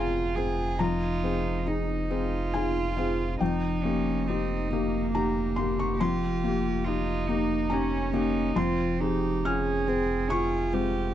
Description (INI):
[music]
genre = neoclassical piano and strings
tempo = 69 BPM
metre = 3/4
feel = rubato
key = F minor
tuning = A4 = 435 Hz
[part]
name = rich cello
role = second line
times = 0.0-11.1 s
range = Bb3 to Ab4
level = -32 LUFS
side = right 6 dB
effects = none
[part]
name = felt-muted upright piano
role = accompaniment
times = 0.0-11.1 s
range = F2 to F6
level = -28 LUFS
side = left 4 dB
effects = none
[part]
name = rich viola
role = accompaniment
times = 0.0-11.1 s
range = Db4 to Ab4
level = -32 LUFS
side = right 3 dB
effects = none
[part]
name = warm sub bass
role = bass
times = 0.0-11.1 s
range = F1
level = -32 LUFS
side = right 1 dB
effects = none
[sound]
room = light reverb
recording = dry, close 1970s-style studio recording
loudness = -25 LUFS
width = side -11 dB against mid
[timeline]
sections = 0.0-11.1 A section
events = none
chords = 0.0 Fm; 0.8 Abadd9/F; 3.4 Eb/F; 8.6 Fm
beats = | 0.79 1.67 2.54 | 3.40 4.27 5.13 | 5.99 6.85 7.70 | 8.56 9.45 10.30